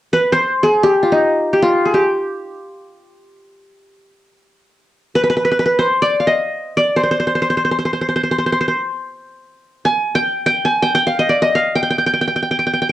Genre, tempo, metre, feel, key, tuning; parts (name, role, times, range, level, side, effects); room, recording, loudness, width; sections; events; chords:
arabic; free time; G maqam hijaz; A4 = 440 Hz
qanun; melody; 0.1-12.9 s; Eb4 to Ab5+25c; -14 LUFS; equal; cassette tape
wet studio reverb, RT60 0.6 s; home recording on cassette; -14 LUFS; side -13 dB against mid
0.0-12.9 A section